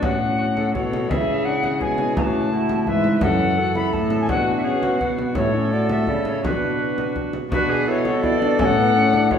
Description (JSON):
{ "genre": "classical, renaissance-style consort dance", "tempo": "168 BPM", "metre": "3/4", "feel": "straight", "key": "B dorian", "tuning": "A4 = 439 Hz", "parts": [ { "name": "mellow alto recorder", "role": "melody", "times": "0.0-9.4 s", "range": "B4 to B5", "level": "-23 LUFS", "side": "left 2 dB", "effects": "none" }, { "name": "rich viola", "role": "second line", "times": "0.0-9.4 s", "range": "E4 to B4", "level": "-26 LUFS", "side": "equal", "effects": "none" }, { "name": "clear trombone", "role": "accompaniment", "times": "0.0-9.4 s", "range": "B3 to F#4", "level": "-26 LUFS", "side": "equal", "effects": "none" }, { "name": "concert harp", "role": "accompaniment", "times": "0.0-9.4 s", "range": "F#2 to A4", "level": "-27 LUFS", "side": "left 2 dB", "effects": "none" }, { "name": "rich cello", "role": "bass", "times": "0.0-9.4 s", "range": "F#2 to C#3", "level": "-24 LUFS", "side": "equal", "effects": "none" }, { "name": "frame drum", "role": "percussion", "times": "0.0-9.4 s", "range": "none", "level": "-28 LUFS", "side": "equal", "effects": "none" } ], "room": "wet stone room reverb, RT60 1.4 s", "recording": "heard from further back in the room", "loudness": "-18 LUFS", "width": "side -7 dB against mid", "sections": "0.0-7.5 A section; 7.5-9.4 A section", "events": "none", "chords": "0.0 F#m/A; 1.1 C#m; 2.2 A; 3.2 F#m; 4.3 Bm; 5.4 A; 6.4 Bm; 8.6 F#m/A" }